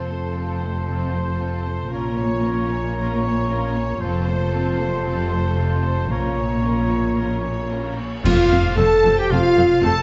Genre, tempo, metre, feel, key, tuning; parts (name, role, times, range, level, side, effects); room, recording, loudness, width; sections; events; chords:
cinematic, heroic adventure film score; 114 BPM; 4/4; straight; F major; A4 = 440 Hz
clear symphonic violin section; melody; 0.0-10.0 s; A4 to A5; -36 LUFS; equal
clear oboe; second line; 0.0-10.0 s; F4 to Db5; -32 LUFS; equal
dark clarinet; second line; 0.0-10.0 s; C4 to A4; -32 LUFS; equal
hollow concert flute; second line; 0.0-8.0 s; A5 to Bb5; -36 LUFS; equal
warm symphonic violin section; second line; 0.0-10.0 s; Db4 to A5; -35 LUFS; equal
rich studio viola section; accompaniment; 0.0-9.9 s; A3 to Db4; -34 LUFS; equal
dark French horn section; sustained chords; 0.0-10.0 s; A3 to A4; -26 LUFS; equal
concert harp; arpeggios; 0.0-10.0 s; F2 to C5; -34 LUFS; equal
mellow trumpet section; stabs; 0.0-7.9 s; C5 to Db5; -34 LUFS; equal
rich symphonic cello section; bass; 0.0-9.9 s; F2 to Bb2; -29 LUFS; equal
rich symphonic double bass section; bass; 0.0-9.9 s; F1 to Bb1; -27 LUFS; equal
cymbal swell, clash cymbals and concert bass drum; percussion; 4.0-9.3 s; -30 LUFS; equal
timpani; percussion; 8.2-9.0 s; F2; -29 LUFS; equal
moderate scoring stage reverb, RT60 1.6 s; nothing above 7.9 kHz; -20 LUFS; mono
0.0-8.2 A section; 8.2-10.0 B section
band accent 8.2-8.8
0.0 F; 1.9 Bbm; 4.0 F; 6.1 Bbm; 8.2 F